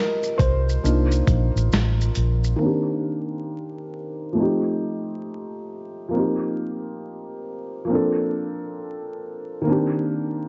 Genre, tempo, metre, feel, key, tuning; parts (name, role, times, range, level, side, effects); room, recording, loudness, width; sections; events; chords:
lo-fi hip hop; 68 BPM; 4/4; swing 63% on 16ths; C dorian; A4 = 440 Hz
felt-muted upright piano; accompaniment; 0.0-10.5 s; Eb3 to Eb5; -26 LUFS; equal; cassette tape, low-pass filter
dusty soul sampler-style drum kit; drums; 0.2-2.6 s; hi-hat, kick drum, shaker, snare drum; -26 LUFS; equal; overdrive, vintage 12-bit sampler grit
vintage muted fingered electric bass; bass; 0.4-2.5 s; A1 to C2; -22 LUFS; equal
light reverb; vinyl crackle, nothing above 7.7 kHz; -23 LUFS; mono
0.0-2.6 A section; 2.6-10.5 B section
felt piano solo 0.0-2.6; filter sweep on felt piano 2.6-10.5
0.0 Eb6; 0.8 Cm11; 2.6 Cm9; 4.4 F9; 6.1 Eb6; 7.9 Bbmaj9; 9.7 Cm9